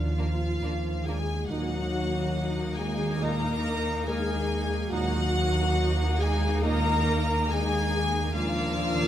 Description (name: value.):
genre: cinematic, suspense film score.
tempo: 70 BPM.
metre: 4/4.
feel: straight.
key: Eb harmonic minor.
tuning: A4 = 436 Hz.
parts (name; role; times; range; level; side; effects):
warm symphonic violin section; melody; 0.0-9.1 s; F5 to Bb5; -32 LUFS; left 3 dB; none.
dark symphonic viola section; accompaniment; 0.0-9.1 s; F4 to Bb4; -33 LUFS; right 1 dB; none.
dark French horn section; sustained chords; 0.0-9.1 s; F3 to Bb3; -33 LUFS; left 2 dB; none.
warm trombone section; sustained chords; 0.0-9.1 s; Bb2 to Eb4; -37 LUFS; right 2 dB; none.
dark studio cello section; bass; 0.0-9.1 s; Eb2; -33 LUFS; right 2 dB; none.
dark studio double bass section; bass; 0.0-9.1 s; Eb2; -34 LUFS; right 2 dB; none.
warm sub bass; drone; 0.0-9.1 s; Eb2; -32 LUFS; equal; none.
warm concert grand piano; texture; 0.0-8.4 s; Bb3 to Bb4; -41 LUFS; left 1 dB; none.
warm symphonic violin section; second line; 0.2-9.1 s; Bb3 to Eb4; -37 LUFS; left 1 dB; none.
timpani; percussion; 1.5-2.7, 8.3-9.1 s; Eb3; -40 LUFS; left 1 dB; none.
dark studio violin section; texture; 8.4-9.1 s; D6 to Fb6; -39 LUFS; left 2 dB; none.
room: wet concert hall reverb, RT60 2.1 s.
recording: none.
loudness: -25 LUFS.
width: side -11 dB against mid.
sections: 0.0-9.1 A section.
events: timpani fill 8.4-9.1.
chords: 0.0 N.C.; 1.5 Ebm; 8.4 Bb/Eb.